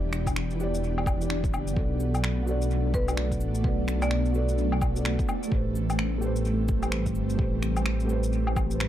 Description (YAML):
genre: future garage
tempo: 128 BPM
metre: 4/4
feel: swing 60% on 16ths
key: unclear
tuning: A4 = 439 Hz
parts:
  - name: felt-muted upright piano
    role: accompaniment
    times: 0.0-8.9 s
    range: E3 to D5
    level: -32 LUFS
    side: right 2 dB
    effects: sidechain pumping, tape echo
  - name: ethereal airy pad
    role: sustained chords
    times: 0.0-8.9 s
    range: E3 to G4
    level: -32 LUFS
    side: equal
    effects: ensemble chorus, built-in reverb, sidechain pumping
  - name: dark detuned saw bass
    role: bass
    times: 0.0-8.9 s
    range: D1 to B1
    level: -28 LUFS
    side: equal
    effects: sidechain pumping
  - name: electronic finger snaps, cabasa, shaker and woodblock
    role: drums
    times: 0.1-8.9 s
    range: none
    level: -34 LUFS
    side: left 2 dB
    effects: overdrive
  - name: electronic kick drum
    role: drums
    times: 0.3-8.7 s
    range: none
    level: -29 LUFS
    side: equal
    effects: overdrive
  - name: marimba with hard mallets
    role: melody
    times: 2.9-4.5 s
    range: B4 to D5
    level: -37 LUFS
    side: equal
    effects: vintage 12-bit sampler grit, tape echo
room: digital ambience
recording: echo-heavy mix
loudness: -24 LUFS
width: side -12 dB against mid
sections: 0.0-8.9 A section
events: none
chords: 0.0 Em7; 1.8 Bm7; 5.5 Am9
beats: 0.36 0.83 1.30 | 1.77 2.24 2.71 3.18 | 3.64 4.11 4.58 5.05 | 5.52 5.99 6.46 6.93 | 7.39 7.86 8.33 8.80